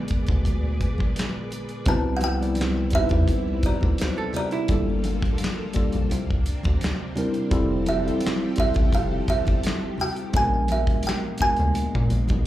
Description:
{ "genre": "R&B, neo-soul", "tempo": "85 BPM", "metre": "4/4", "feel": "swing 54% on 16ths", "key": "C major", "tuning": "A4 = 440 Hz", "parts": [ { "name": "tine electric piano", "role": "accompaniment", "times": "0.0-12.5 s", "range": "D3 to D5", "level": "-27 LUFS", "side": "left 1 dB", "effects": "medium stereo tremolo, slapback echo" }, { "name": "string machine, violins", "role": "sustained chords", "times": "0.0-12.5 s", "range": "Bb2 to D5", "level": "-35 LUFS", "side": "equal", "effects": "ensemble chorus" }, { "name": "rubbery square bass", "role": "bass", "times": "0.1-12.4 s", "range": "F1 to Bb2", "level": "-24 LUFS", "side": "equal", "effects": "none" }, { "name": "warm soul drum kit", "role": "drums", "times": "0.1-12.4 s", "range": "handclaps, hi-hat, kick drum, snare drum", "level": "-25 LUFS", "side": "equal", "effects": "none" }, { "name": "congas", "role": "percussion", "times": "0.3-12.4 s", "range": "none", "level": "-36 LUFS", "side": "right 1 dB", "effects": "none" }, { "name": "kalimba", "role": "melody", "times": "1.9-12.5 s", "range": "C5 to A5", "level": "-27 LUFS", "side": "right 1 dB", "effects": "slapback echo" }, { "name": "archtop guitar, miked and amplified", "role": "second line", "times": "4.2-4.9 s", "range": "E4 to A4", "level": "-28 LUFS", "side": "right 8 dB", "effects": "none" } ], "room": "light reverb", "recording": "live gig heard through the venue's PA, club reverb", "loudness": "-21 LUFS", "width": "side -14 dB against mid", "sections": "0.0-1.9 A section; 1.9-12.5 B section", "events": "tine electric piano solo 0.0-1.9", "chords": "0.0 Bb7b9; 1.9 Cmaj7; 4.7 Gm9; 6.1 C9; 7.5 Fmaj9; 10.3 Bb7b9", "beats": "0.45 1.16 | 1.86 2.57 3.28 3.98 | 4.69 5.39 6.10 6.81 | 7.51 8.22 8.92 9.63 | 10.34 11.04 11.75 12.45" }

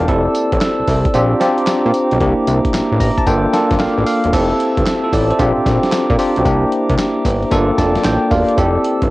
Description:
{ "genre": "R&B, new jack swing", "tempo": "113 BPM", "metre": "4/4", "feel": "swing 66% on 16ths", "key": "F major", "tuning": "A4 = 439 Hz", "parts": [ { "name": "bell-like tine electric piano", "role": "accompaniment", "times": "0.0-9.1 s", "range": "Bb3 to Bb5", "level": "-16 LUFS", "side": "equal", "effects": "medium stereo tremolo, cassette tape" }, { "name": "glass harmonica", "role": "sustained chords", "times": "0.0-9.1 s", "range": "Bb3 to E6", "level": "-22 LUFS", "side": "equal", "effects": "cassette tape" }, { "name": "fat analog bass", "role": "bass", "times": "0.0-9.1 s", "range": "E1 to Bb2", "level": "-17 LUFS", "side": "equal", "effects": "none" }, { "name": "dusty soul sampler-style drum kit", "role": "drums", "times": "0.1-9.1 s", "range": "crash cymbal, handclaps, hi-hat, kick drum, snare drum, tambourine", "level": "-20 LUFS", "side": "equal", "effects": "cassette tape" } ], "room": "moderate spring reverb, RT60 2.0 s", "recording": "home recording on cassette", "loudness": "-13 LUFS", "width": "side -19 dB against mid", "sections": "0.0-4.3 A section; 4.3-9.1 B section", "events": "tine electric piano fill 2.7-4.3, 7.5-8.6", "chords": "0.1 Fmaj7; 1.1 Bb69; 2.2 C9; 3.3 Gm7; 4.3 Fmaj7; 5.4 Bb69; 6.5 C9; 7.5 Gm7; 8.6 Fmaj7", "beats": "| 0.08 0.61 1.15 1.68 | 2.21 2.74 3.27 3.80 | 4.33 4.86 5.39 5.92 | 6.45 6.99 7.52 8.05 | 8.58" }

